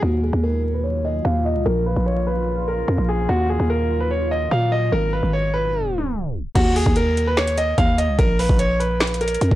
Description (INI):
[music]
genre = hip hop, trap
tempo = 147 BPM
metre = 4/4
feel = half-time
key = Eb minor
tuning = A4 = 440 Hz
[part]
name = clear concert grand piano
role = melody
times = 0.0-9.6 s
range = Gb4 to F5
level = -22 LUFS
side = equal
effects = low-pass filter, digital delay
[part]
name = deep dark ambient pad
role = sustained chords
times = 0.0-6.5 s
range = Bb2 to F4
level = -30 LUFS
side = left 2 dB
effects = chorus, built-in reverb, low-pass filter
[part]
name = growling 808-style bass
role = bass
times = 0.0-9.6 s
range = Ab1 to Bb2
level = -21 LUFS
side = equal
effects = none
[part]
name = trap drum kit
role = drums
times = 6.6-9.6 s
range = crash cymbal, finger snaps, hi-hat, kick drum, snare drum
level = -20 LUFS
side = equal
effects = overdrive
[sound]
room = little or no reverb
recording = blown-out, overdriven recording, vinyl crackle, overdrive, tape stop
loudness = -18 LUFS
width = side -15 dB against mid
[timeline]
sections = 0.0-6.6 A section; 6.6-9.6 B section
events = filter sweep 0.0-6.6; tape stop 5.7-6.6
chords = 0.0 Ebmadd9; 1.7 Bbm; 3.3 Ebmadd9; 4.9 Abmadd9; 6.6 N.C.; 8.2 Bb5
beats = | 0.03 0.43 0.84 1.25 | 1.66 2.06 2.47 2.88 | 3.29 3.70 4.11 4.51 | 4.92 5.33 5.74 6.15 | 6.55 6.96 7.37 7.78 | 8.19 8.60 9.00 9.41